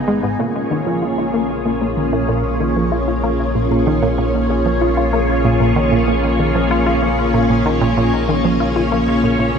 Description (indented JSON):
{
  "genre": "ambient, sequencer-driven space music",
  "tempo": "95 BPM",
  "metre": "4/4",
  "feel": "straight",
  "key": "unclear",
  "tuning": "A4 = 439 Hz",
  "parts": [
    { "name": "string machine, full ensemble", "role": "sustained chords", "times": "0.0-9.6 s", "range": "A#3 to C#5", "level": "-17 LUFS", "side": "equal", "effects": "ensemble chorus" },
    { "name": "warm sub bass", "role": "bass", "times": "0.0-9.6 s", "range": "G#1 to A#1", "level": "-23 LUFS", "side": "equal", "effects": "none" },
    { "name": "tight sequenced synth", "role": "riff", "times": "0.1-9.6 s", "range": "G#2 to E#4", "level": "-19 LUFS", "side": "equal", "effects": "chorus, ping-pong delay" }
  ],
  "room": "wet cathedral reverb, RT60 6.1 s",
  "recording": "in a vast, echoing space",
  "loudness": "-14 LUFS",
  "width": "side -6 dB against mid",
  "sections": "0.0-9.6 A section",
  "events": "none",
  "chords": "0.4 A#m7"
}